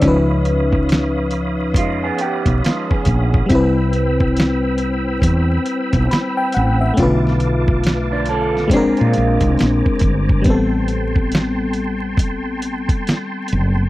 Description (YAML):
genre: R&B, neo-soul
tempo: 69 BPM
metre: 4/4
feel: swing 61% on 16ths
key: unclear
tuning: A4 = 440 Hz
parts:
  - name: FM electric piano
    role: accompaniment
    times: 0.0-13.9 s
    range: D3 to B5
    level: -19 LUFS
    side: left 2 dB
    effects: chorus
  - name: tonewheel organ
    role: sustained chords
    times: 0.0-13.9 s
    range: C4 to E6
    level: -26 LUFS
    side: right 1 dB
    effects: slow rotary speaker, chorus vibrato
  - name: woody fretless electric bass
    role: bass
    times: 0.0-13.9 s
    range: F#1 to Bb2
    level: -19 LUFS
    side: equal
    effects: none
  - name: dusty soul sampler-style drum kit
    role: drums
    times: 0.0-13.7 s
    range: hi-hat, kick drum, snare drum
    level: -18 LUFS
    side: equal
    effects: overdrive
  - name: electric guitar through a small old amp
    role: second line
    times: 1.8-10.3 s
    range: F3 to A4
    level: -22 LUFS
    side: right 4 dB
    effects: phaser
room: digital ambience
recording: dry, close 1970s-style studio recording, vinyl crackle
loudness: -15 LUFS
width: side -17 dB against mid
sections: 0.0-13.9 A section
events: none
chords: 0.0 C#9; 3.5 Cmaj7; 7.0 Bm7b5; 8.7 Bb9; 10.5 Am9